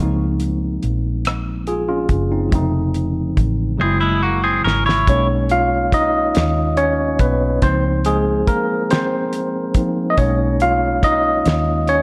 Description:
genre	slow six-eight R&B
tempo	47 BPM (dotted quarters)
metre	6/8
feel	straight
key	unclear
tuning	A4 = 441 Hz
part	tine electric piano	accompaniment	0.0-12.0 s	Db3 to F5	-20 LUFS	equal	overdrive
part	vintage muted fingered electric bass	bass	0.0-12.0 s	F1 to Eb2	-23 LUFS	equal	none
part	cloth-damped thuddy drum kit	drums	0.4-12.0 s	hi-hat, kick drum, rim click, snare drum	-21 LUFS	equal	none
part	clean electric guitar	second line	3.8-5.3 s	Ab3 to Db5	-21 LUFS	equal	none
room	light reverb, small room ambience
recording	none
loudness	-18 LUFS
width	mono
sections	0.0-5.1 A section; 5.1-12.0 B section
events	drum fill 3.8-5.1; tine electric piano solo 5.1-12.0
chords	0.0 Dbmaj13; 2.5 F7b13; 3.8 Gb9; 5.1 Cbmaj13; 7.6 Dbmaj13; 10.2 Cbmaj13

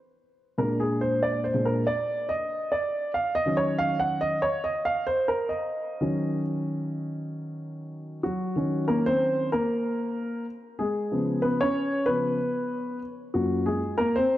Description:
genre	hip hop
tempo	94 BPM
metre	4/4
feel	swing 57% on 16ths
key	unclear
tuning	A4 = 439 Hz
part	dark grand piano	solo	0.6-14.4 s	Gb2 to Gb5	-24 LUFS	equal	slapback echo
room	moderate plate reverb, RT60 3.4 s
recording	dark, warm production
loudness	-24 LUFS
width	side -14 dB against mid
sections	0.0-8.2 A section; 8.2-14.4 B section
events	grand piano solo 0.0-8.2, 8.2-14.4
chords	0.0 N.C.; 0.6 Bb7; 3.1 Ebm7; 10.8 Db7; 13.4 Gbmaj9#11

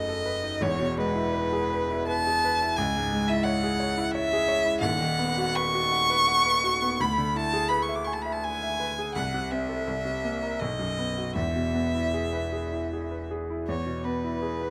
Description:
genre	classical, romantic duo for violin and grand piano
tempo	77-88 BPM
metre	3/4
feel	rubato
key	E major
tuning	A4 = 440 Hz
part	clear violin	melody	0.0-14.7 s	B4 to D6	-29 LUFS	equal	none
part	bright concert grand piano	accompaniment	0.0-14.7 s	D#1 to G#5	-31 LUFS	equal	none
room	light reverb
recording	close, detailed microphones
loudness	-27 LUFS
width	mono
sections	0.0-13.7 A section; 13.7-14.7 B section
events	none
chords	0.0 B7/F#; 0.6 E; 2.8 C#m; 4.8 B/D#; 7.0 E7/D; 9.2 Am/C; 9.9 C7; 10.6 B; 11.4 E

